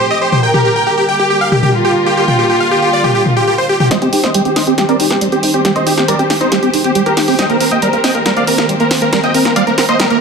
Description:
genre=uplifting trance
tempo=138 BPM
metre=4/4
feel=straight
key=unclear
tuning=A4 = 442 Hz
part: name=big supersaw lead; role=melody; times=0.0-10.2 s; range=Eb4 to G5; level=-14 LUFS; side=equal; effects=cassette tape, low-pass filter, ping-pong delay
part: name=warm studio violin section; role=second line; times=0.0-3.8 s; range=F4 to Bb4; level=-15 LUFS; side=equal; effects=dub echo
part: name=dark chamber string section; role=sustained chords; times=0.0-10.2 s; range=D3 to C5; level=-20 LUFS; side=left 1 dB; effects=none
part: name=punchy analog drum machine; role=drums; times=0.3-10.2 s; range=hi-hat, snare drum, toms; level=-17 LUFS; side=left 1 dB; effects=overdrive, high-pass filter on toms, high-pass filter on snare, high-pass filter on hats, high-pass filter on room
part: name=liquid acid bass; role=arpeggios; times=3.9-10.2 s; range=G3 to Eb4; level=-16 LUFS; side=right 2 dB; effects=wide subtle chorus, ping-pong delay
room=moderate scoring stage reverb, RT60 1.6 s, digital ambience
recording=none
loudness=-10 LUFS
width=side -5 dB against mid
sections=0.0-3.9 A section; 3.9-10.2 B section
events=build-up 3.9-10.2; drum fill 3.9-10.2; filter sweep on supersaw synth 3.9-10.2; filter sweep on acid bass 3.9-10.2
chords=0.4 Gm; 3.9 Cm; 7.4 Eb6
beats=0.00 | 0.43 0.87 1.30 1.74 | 2.17 2.61 3.04 3.48 | 3.91 4.34 4.78 5.21 | 5.65 6.08 6.52 6.95 | 7.39 7.82 8.26 8.69 | 9.13 9.56 10.00

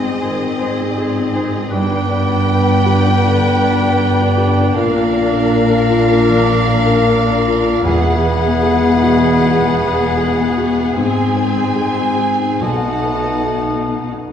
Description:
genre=cinematic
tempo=78 BPM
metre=4/4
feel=uneven beats, rubato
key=unclear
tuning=A4 = 435 Hz
part: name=warm studio violin section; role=melody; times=0.0-14.1 s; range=Eb5 to Ab5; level=-23 LUFS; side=left 2 dB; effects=none
part: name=warm studio violin section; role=second line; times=0.0-14.1 s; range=G#4 to B4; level=-24 LUFS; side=left 2 dB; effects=none
part: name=felt-muted upright piano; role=accompaniment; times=0.0-14.3 s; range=B1 to D5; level=-20 LUFS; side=left 3 dB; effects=none
part: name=warm studio viola section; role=accompaniment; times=0.0-14.1 s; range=B3 to D#4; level=-23 LUFS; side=left 1 dB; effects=none
part: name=mellow French horn section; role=sustained chords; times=0.0-14.0 s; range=G#3 to E4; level=-21 LUFS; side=left 3 dB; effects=none
part: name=warm studio cello section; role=bass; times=0.0-14.1 s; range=E2 to B2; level=-20 LUFS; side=right 2 dB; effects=none
part: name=warm studio double bass section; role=bass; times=0.0-14.1 s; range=E1 to B1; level=-22 LUFS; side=right 2 dB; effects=none
part: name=clear clarinet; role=second line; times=0.2-13.9 s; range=F#4 to B4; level=-24 LUFS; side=equal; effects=none
part: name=mellow cor anglais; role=second line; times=0.2-14.0 s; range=B4 to D#5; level=-25 LUFS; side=right 2 dB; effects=none
part: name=mellow hollow concert flute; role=second line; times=0.2-14.0 s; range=F5 to A5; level=-24 LUFS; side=left 1 dB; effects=none
room=wet scoring stage reverb, RT60 1.9 s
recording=heard from further back in the room, small room reverb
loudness=-12 LUFS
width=side -8 dB against mid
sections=0.0-14.3 A section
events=none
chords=0.0 Ab; 1.7 G; 4.7 Bb; 7.9 Eadd9; 11.0 Ab; 12.6 B7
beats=0.21 0.96 | 1.72 2.47 3.24 4.00 | 4.75 5.51 6.29 7.07 | 7.85 8.63 9.40 10.18 | 10.97 11.78 12.62 13.47

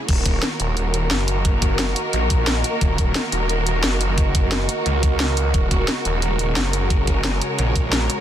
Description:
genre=dark technical drum and bass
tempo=176 BPM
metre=4/4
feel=straight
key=unclear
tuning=A4 = 440 Hz
part: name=warm symphonic string section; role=sustained chords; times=0.0-8.2 s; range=Db3 to Bb4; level=-25 LUFS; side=equal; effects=sidechain pumping
part: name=warbly tape-like pad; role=texture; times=0.0-8.2 s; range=Gb4 to Bb5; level=-28 LUFS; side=right 1 dB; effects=chorus, built-in reverb, phaser, sidechain pumping
part: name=snarling distorted saw bass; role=bass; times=0.1-8.1 s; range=Eb1 to Db2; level=-22 LUFS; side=equal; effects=distortion, overdrive, sidechain pumping
part: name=drum and bass drum kit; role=drums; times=0.1-8.2 s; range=crash cymbal, hi-hat, snare drum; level=-24 LUFS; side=equal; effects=none
part: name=electronic kick drum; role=drums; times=0.1-7.8 s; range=none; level=-19 LUFS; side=equal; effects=none
room=light reverb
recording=dense, heavily limited modern master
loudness=-18 LUFS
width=side -10 dB against mid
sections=0.0-8.2 A section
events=none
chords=0.1 Gbadd9/Eb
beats=| 0.09 0.43 0.77 1.11 | 1.45 1.79 2.13 2.47 | 2.81 3.15 3.50 3.84 | 4.18 4.52 4.86 5.20 | 5.54 5.88 6.22 6.56 | 6.90 7.25 7.59 7.93

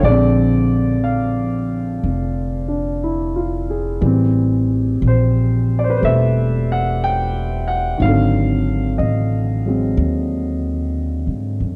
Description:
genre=jazz ballad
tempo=60 BPM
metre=4/4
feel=swing 66% on 8ths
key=unclear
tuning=A4 = 436 Hz
part: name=warm grand piano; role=accompaniment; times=0.0-11.8 s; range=D3 to G5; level=-21 LUFS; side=equal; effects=none
part: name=upright bass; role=bass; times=0.0-11.8 s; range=E1 to Ab2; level=-21 LUFS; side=equal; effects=none
room=little or no reverb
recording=dry, close 1970s-style studio recording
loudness=-18 LUFS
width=mono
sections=0.0-11.8 A section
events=none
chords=0.0 Bb9; 4.0 Am7; 8.0 Ab7#11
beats=| 0.02 1.01 2.01 3.01 | 4.01 5.01 6.01 7.01 | 8.01 8.99 9.98 10.96

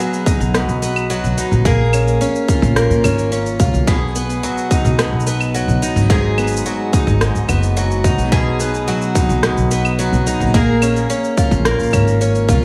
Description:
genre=folktronica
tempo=108 BPM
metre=4/4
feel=straight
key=B lydian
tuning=A4 = 440 Hz
part: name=picked twelve-string acoustic guitar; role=arpeggios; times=0.0-12.6 s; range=G#2 to G#4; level=-20 LUFS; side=equal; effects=digital delay
part: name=electronic shaker, rim click and claves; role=drums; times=0.1-12.6 s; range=none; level=-26 LUFS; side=equal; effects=none
part: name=electronic kick drum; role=drums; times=0.3-12.6 s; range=none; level=-19 LUFS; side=equal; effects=overdrive
part: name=upright bass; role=bass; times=0.4-12.6 s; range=F#1 to A#2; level=-20 LUFS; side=equal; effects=none
room=digital ambience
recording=studio reverb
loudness=-16 LUFS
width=mono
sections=0.0-12.6 A section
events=none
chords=0.0 B6; 1.7 A#m7; 3.9 B6; 6.1 G#m7; 8.3 B6; 10.5 A#m7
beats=0.54 1.10 | 1.65 2.21 2.77 3.32 | 3.88 4.43 4.99 5.54 | 6.10 6.65 7.21 7.76 | 8.32 8.88 9.43 9.99 | 10.54 11.10 11.65 12.21

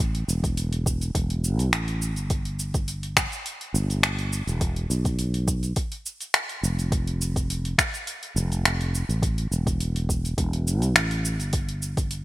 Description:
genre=sunset chillout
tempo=104 BPM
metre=4/4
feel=swing 53% on 16ths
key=unclear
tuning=A4 = 440 Hz
part: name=fretless electric bass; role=bass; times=0.0-12.2 s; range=E1 to C2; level=-25 LUFS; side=equal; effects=none
part: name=electronic kick drum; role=drums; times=0.0-12.1 s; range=none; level=-27 LUFS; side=equal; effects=overdrive
part: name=smooth R&B drum kit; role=drums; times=0.0-12.2 s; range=finger snaps, hi-hat, shaker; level=-26 LUFS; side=left 1 dB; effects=overdrive
room=little or no reverb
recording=bright 1980s-style digital production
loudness=-23 LUFS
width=side -17 dB against mid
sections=0.0-12.2 A section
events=none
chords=none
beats=| 0.00 0.57 1.15 1.73 | 2.30 2.88 3.46 4.03 | 4.61 5.19 5.76 6.34 | 6.92 7.50 8.07 8.65 | 9.23 9.80 10.38 10.96 | 11.53 12.11

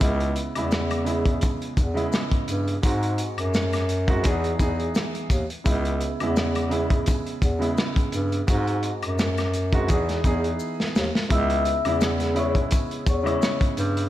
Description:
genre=hip hop, boom-bap hip-hop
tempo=85 BPM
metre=4/4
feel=swing 54% on 16ths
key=C# minor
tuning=A4 = 440 Hz
part: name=warm concert grand piano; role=accompaniment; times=0.0-14.1 s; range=G#2 to G#4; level=-28 LUFS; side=right 2 dB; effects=high-pass filter, low-pass filter
part: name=warm bass clarinet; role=bass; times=0.0-14.1 s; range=C#2 to G#2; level=-25 LUFS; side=equal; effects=none
part: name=crunchy breakbeat drum kit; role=drums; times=0.0-14.1 s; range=hi-hat, kick drum, rim click, snare drum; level=-24 LUFS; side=equal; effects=none
part: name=maracas and woodblock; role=percussion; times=0.0-14.0 s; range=none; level=-38 LUFS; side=left 6 dB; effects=none
part: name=vibraphone with soft mallets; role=melody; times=11.3-13.6 s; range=C#5 to E6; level=-27 LUFS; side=left 5 dB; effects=high-pass filter, low-pass filter, diffuse ambient delay
room=light reverb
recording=none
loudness=-21 LUFS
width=side -14 dB against mid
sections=0.0-11.3 A section; 11.3-14.1 B section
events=drum fill 10.6-11.3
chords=0.0 C#m7; 2.8 G#7; 4.2 Emaj7; 5.7 C#m7; 8.5 G#7; 9.9 Emaj7; 11.3 C#m7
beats=| 0.01 0.72 1.42 2.13 | 2.83 3.54 4.25 4.95 | 5.66 6.36 7.07 7.78 | 8.48 9.19 9.89 10.60 | 11.30 12.01 12.72 13.42

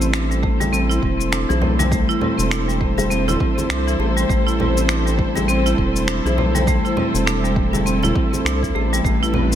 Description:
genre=organic downtempo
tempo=101 BPM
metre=4/4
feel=swing 59% on 16ths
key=A minor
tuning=A4 = 443 Hz
part: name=dark studio string section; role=sustained chords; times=0.0-9.6 s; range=G3 to C5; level=-25 LUFS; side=left 1 dB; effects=sidechain pumping
part: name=marimba with hard mallets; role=arpeggios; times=0.0-9.6 s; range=E3 to E4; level=-21 LUFS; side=equal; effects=tape echo
part: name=round analog bass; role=bass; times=0.0-9.6 s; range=E1 to C2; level=-21 LUFS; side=equal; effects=sidechain pumping
part: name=electronic cabasa and finger snaps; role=drums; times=0.0-9.6 s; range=none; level=-26 LUFS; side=left 2 dB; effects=small room reverb
part: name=electronic kick drum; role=drums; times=0.4-9.2 s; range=none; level=-22 LUFS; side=equal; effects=small room reverb
part: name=congas and bongos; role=percussion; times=0.6-9.5 s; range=none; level=-28 LUFS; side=left 1 dB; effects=none
room=light reverb, studio reverb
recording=none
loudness=-16 LUFS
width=side -10 dB against mid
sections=0.0-9.6 A section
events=none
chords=0.0 Am7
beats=0.14 0.73 1.33 | 1.92 2.51 3.11 3.70 | 4.30 4.89 5.48 6.08 | 6.67 7.27 7.86 8.45 | 9.05

